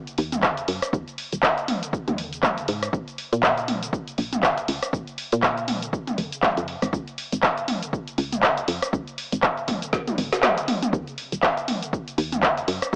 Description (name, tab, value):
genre	afro house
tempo	120 BPM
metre	4/4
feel	swing 58% on 16ths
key	unclear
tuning	A4 = 444 Hz
part	deep house drum kit	drums	0.1-12.9 s	handclaps, hi-hat, rim click, shaker, snare drum, toms	-25 LUFS	equal	cassette tape
part	woody FM bass	bass	0.2-13.0 s	Eb1 to Bb2	-29 LUFS	equal	sidechain pumping
part	electronic kick drum	drums	0.4-13.0 s	none	-32 LUFS	equal	overdrive, cassette tape
room	moderate spring reverb, RT60 2.0 s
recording	home recording on cassette, small speaker sound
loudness	-25 LUFS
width	mono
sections	0.0-13.0 A section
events	drum fill 9.9-10.9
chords	none